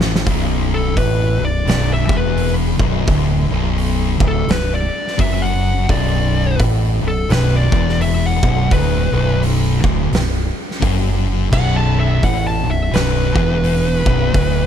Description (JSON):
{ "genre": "stoner and doom metal", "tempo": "85 BPM", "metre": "4/4", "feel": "swing 60% on 8ths", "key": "B minor", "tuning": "A4 = 439 Hz", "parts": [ { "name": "thick fuzz guitar", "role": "riff", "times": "0.0-14.7 s", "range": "B1 to A2", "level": "-21 LUFS", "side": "left 10 dB", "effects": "distortion" }, { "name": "thick fuzz guitar", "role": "riff", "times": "0.0-14.7 s", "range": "B1 to A2", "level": "-21 LUFS", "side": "right 10 dB", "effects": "distortion" }, { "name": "growling fingered electric bass", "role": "bass", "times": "0.0-14.7 s", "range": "B0 to A1", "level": "-20 LUFS", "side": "equal", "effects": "overdrive" }, { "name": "oversized low-tuned drum kit", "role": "drums", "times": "0.0-14.5 s", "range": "crash cymbal, hi-hat, kick drum, snare drum", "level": "-20 LUFS", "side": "equal", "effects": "none" }, { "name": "fuzz lead guitar", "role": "melody", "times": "0.7-14.7 s", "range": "A4 to A5", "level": "-23 LUFS", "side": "left 3 dB", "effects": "distortion, tape echo" } ], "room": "little or no reverb", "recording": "dark, warm production", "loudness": "-14 LUFS", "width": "side -9 dB against mid", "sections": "0.3-14.7 A section", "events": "drum fill 0.0; lead electric guitar solo 0.3-14.7", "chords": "0.3 Bm" }